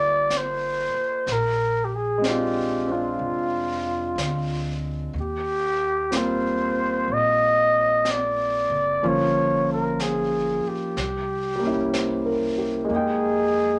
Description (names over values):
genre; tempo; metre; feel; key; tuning
jazz ballad; 62 BPM; 4/4; swing 66% on 8ths; C minor; A4 = 438 Hz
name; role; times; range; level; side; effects
trumpet with bucket mute; melody; 0.0-13.8 s; F4 to Eb5; -25 LUFS; equal; none
warm concert grand piano; accompaniment; 0.0-13.8 s; F3 to G5; -29 LUFS; equal; none
upright bass; bass; 0.0-13.8 s; F1 to F2; -35 LUFS; equal; none
jazz brush drum kit; drums; 0.3-13.8 s; brushed snare drum, hi-hat, snare drum; -37 LUFS; equal; none
room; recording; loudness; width
wet club reverb, RT60 0.5 s; none; -24 LUFS; mono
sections
0.0-13.8 A section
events
none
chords
0.0 Cm11; 1.3 Bb7; 5.1 Eb69; 9.0 Gm7b5; 10.9 C7b9; 12.9 Fm11